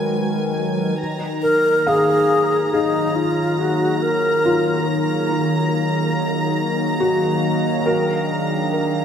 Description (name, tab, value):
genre	ambient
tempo	70 BPM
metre	4/4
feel	straight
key	Eb minor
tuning	A4 = 440 Hz
part	warbly tape-like pad	sustained chords	0.0-9.0 s	Eb3 to F5	-24 LUFS	equal	chorus, built-in reverb
part	felt-muted upright piano	arpeggios	0.0-9.0 s	F4 to F5	-25 LUFS	left 1 dB	analog delay
part	overtone-sweeping drone	drone	0.0-9.0 s	Eb3	-24 LUFS	equal	chorus, built-in reverb, phaser
part	rich chamber violin section	texture	0.0-9.0 s	Ab5 to Bb6	-27 LUFS	equal	none
part	breathy wooden-headed alto flute	melody	1.4-4.9 s	Eb4 to Bb4	-19 LUFS	equal	analog delay
room	wet lush hall reverb, RT60 2.6 s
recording	dreamy mix soaked in reverb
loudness	-17 LUFS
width	side -8 dB against mid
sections	1.0-9.0 A section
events	fade-in on ambient pad 1.0-9.0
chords	0.0 Abm9; 1.0 Ebm11; 7.9 Bb7b13